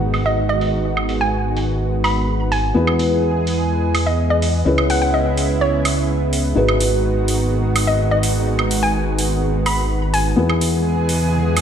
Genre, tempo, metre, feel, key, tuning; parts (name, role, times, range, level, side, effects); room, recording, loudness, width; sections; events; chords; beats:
EDM, festival progressive house; 126 BPM; 4/4; straight; G# minor; A4 = 443 Hz
felt-muted upright piano; accompaniment; 0.0-11.6 s; B3 to B4; -23 LUFS; left 3 dB
lush unison pad; sustained chords; 0.0-11.6 s; C#3 to G#4; -22 LUFS; right 2 dB; chorus
fat analog bass; bass; 0.0-11.6 s; G#1 to E2; -20 LUFS; equal; tube saturation
impact and riser; sound effects; 0.0-0.9, 11.2-11.6 s; -32 LUFS; right 3 dB
electronic hi-hat and woodblock; drums; 0.1-11.6 s; -24 LUFS; right 3 dB; overdrive, low-pass filter on hats, studio reverb, low-pass filter on perc, low-pass filter on cymbals, low-pass filter on snare
hollow square pluck; melody; 0.3-10.4 s; C#5 to B5; -22 LUFS; equal; chorus, digital delay
moderate lush hall reverb, RT60 1.7 s, digital ambience; -16 LUFS; side -8 dB against mid
0.0-11.6 A section
impact 0.0-0.9; filter sweep on analog synth pad 0.0-11.6
0.0 G#m7; 2.8 E; 4.7 C#m7; 6.6 G#m7; 10.4 E
0.38 | 0.85 1.33 1.80 2.28 | 2.76 3.23 3.71 4.18 | 4.66 5.14 5.61 6.09 | 6.57 7.04 7.52 7.99 | 8.47 8.95 9.42 9.90 | 10.38 10.85 11.33